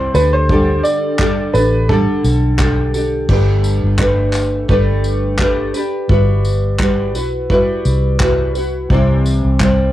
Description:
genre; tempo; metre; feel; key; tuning
acoustic pop; 86 BPM; 4/4; swing 55% on 16ths; G major; A4 = 445 Hz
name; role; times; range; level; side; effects
clear upright piano; melody; 0.0-2.6 s; A4 to D5; -18 LUFS; right 1 dB; cassette tape, tape echo
nylon-string guitar; accompaniment; 0.0-9.9 s; C3 to C5; -17 LUFS; equal; double-tracked left and right
vintage muted fingered electric bass; bass; 0.0-9.9 s; G1 to D2; -16 LUFS; equal; none
natural country drum kit; drums; 0.1-9.8 s; crash cymbal, handclaps, kick drum, tambourine; -19 LUFS; equal; cassette tape
room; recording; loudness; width
little or no reverb; home recording on cassette; -12 LUFS; side -14 dB against mid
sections
0.0-3.3 A section; 3.3-9.9 B section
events
none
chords
0.1 Dsus4; 3.3 Gadd9; 6.1 Emadd9/G; 8.9 C

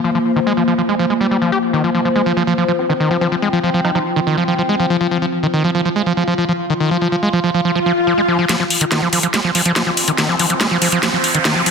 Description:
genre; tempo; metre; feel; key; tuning
psychedelic trance; 142 BPM; 4/4; straight; F minor; A4 = 438 Hz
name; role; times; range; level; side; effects
overtone-sweeping drone; sustained chords; 0.0-11.7 s; F3 to F4; -20 LUFS; left 2 dB; chorus, built-in reverb, phaser
overdriven acid bass; riff; 0.0-11.7 s; Eb3 to G4; -16 LUFS; moving between left 4 dB and right 4 dB; distortion, auto-pan, tape echo
resonant blip pluck; second line; 2.8-4.0 s; C4 to Eb4; -26 LUFS; right 1 dB; chorus, phaser, high-pass filter, tape echo
swell and riser; sound effects; 7.8-11.7 s; none; -21 LUFS; right 1 dB; none
drum and bass drum kit; drums; 8.5-11.7 s; hi-hat, snare drum; -17 LUFS; equal; overdrive, low-pass filter on snare, low-pass filter on hats
room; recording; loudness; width
moderate digital room reverb, RT60 1.1 s; dense, heavily limited modern master; -14 LUFS; side -5 dB against mid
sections
0.0-8.5 A section; 8.5-11.7 B section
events
swell 7.8-8.5; build-up 8.5-11.7; drum fill 8.5-11.7; riser 8.5-11.7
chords
0.0 F5

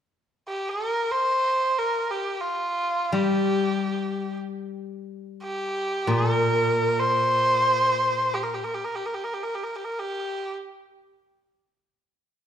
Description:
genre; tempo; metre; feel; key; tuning
chinese traditional; free time; none; none; G yu mode; A4 = 440 Hz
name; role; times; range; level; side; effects
clear erhu; melody; 0.5-10.5 s; F4 to C5; -24 LUFS; equal; none
steel-string zither; accompaniment; 3.1-8.6 s; Bb2 to G3; -26 LUFS; left 2 dB; none
room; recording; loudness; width
moderate recital hall reverb, RT60 1.4 s; dark, warm production; -22 LUFS; side -9 dB against mid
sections
0.0-12.5 A section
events
none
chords
none

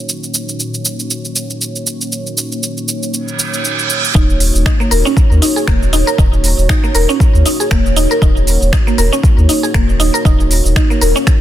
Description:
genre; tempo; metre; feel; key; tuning
afro house; 118 BPM; 4/4; swing 56% on 16ths; Eb minor; A4 = 437 Hz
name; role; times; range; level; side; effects
dark analog pad; sustained chords; 0.0-11.4 s; Bb3 to Db5; -21 LUFS; right 1 dB; chorus, phaser, sidechain pumping
afro-pop drum kit; drums; 0.1-11.4 s; finger snaps, hi-hat, shaker; -19 LUFS; right 2 dB; soft clipping on snare
reverse cymbal; sound effects; 3.3-4.2 s; none; -18 LUFS; right 6 dB; none
mallet-like synth pluck; arpeggios; 4.1-11.3 s; Bb3 to Bb4; -17 LUFS; equal; lush chorus, sidechain pumping, dub echo
warm sub bass; bass; 4.1-11.1 s; Eb1 to Eb2; -14 LUFS; equal; sidechain pumping
electronic kick drum; drums; 4.1-11.4 s; none; -12 LUFS; equal; none
room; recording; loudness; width
little or no reverb; dense, heavily limited modern master; -11 LUFS; side -12 dB against mid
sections
0.0-4.2 A section; 4.2-11.4 B section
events
filter sweep on analog synth pad 0.0-4.2; reverse cymbal 3.3-4.2; drop 4.2-11.4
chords
0.0 Ebm7

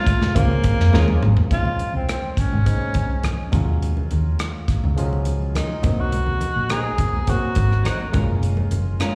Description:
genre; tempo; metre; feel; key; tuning
lush 1970s-style soul; 104 BPM; 4/4; straight; Bb minor; A4 = 440 Hz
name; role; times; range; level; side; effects
breathy tenor saxophone; melody; 0.0-8.2 s; Bb3 to Ab4; -28 LUFS; equal; slapback echo
warm concert grand piano; accompaniment; 0.0-9.2 s; F3 to C5; -32 LUFS; equal; slapback echo
modern studio drum kit; drums; 0.1-9.1 s; hi-hat, kick drum, rim click, snare drum, toms; -24 LUFS; equal; none
congas; percussion; 0.2-9.1 s; none; -30 LUFS; equal; none
hollow-body short-scale fingered electric bass; bass; 0.4-8.9 s; Gb1 to F2; -23 LUFS; equal; none
semi-hollow electric guitar; riff; 0.9-1.1, 6.7-9.1 s; Gb3 to Bb4; -32 LUFS; equal; spring reverb, slapback echo
room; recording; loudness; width
light reverb; live gig heard through the venue's PA, recital hall reverb, small room ambience; -20 LUFS; mono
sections
0.0-1.5 A section; 1.5-9.2 B section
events
drum fill 0.9-1.5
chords
0.0 Bbm7; 1.5 Bbm11 (rootless); 3.5 Ebm11; 5.8 Cm7b5; 8.1 Gbmaj9

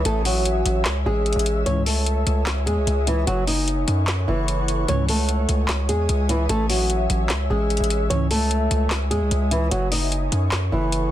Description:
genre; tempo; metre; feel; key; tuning
hip hop, trap; 149 BPM; 4/4; half-time; C# minor; A4 = 438 Hz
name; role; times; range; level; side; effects
ethereal airy pad; sustained chords; 0.0-11.1 s; A4 to E6; -29 LUFS; equal; ensemble chorus, built-in reverb
distorted 808-style bass; bass; 0.0-11.1 s; F#1 to F#2; -22 LUFS; equal; distortion
flamenco guitar; melody; 0.1-11.1 s; E3 to D#5; -24 LUFS; equal; digital delay
trap drum kit; drums; 0.1-11.0 s; handclaps, hi-hat, snare drum; -26 LUFS; left 1 dB; vintage 12-bit sampler grit
mellow synth brass; stabs; 1.7-1.8, 4.9-5.1, 8.1-8.3 s; C#2 to E3; -26 LUFS; equal; chorus
room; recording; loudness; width
digital ambience; dense, heavily limited modern master; -19 LUFS; side -12 dB against mid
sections
0.0-1.7 A section; 1.7-11.1 A section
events
none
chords
0.1 A; 1.7 C#madd9; 3.3 F#m; 4.9 C#madd9; 6.5 A; 8.1 C#madd9; 9.7 F#m

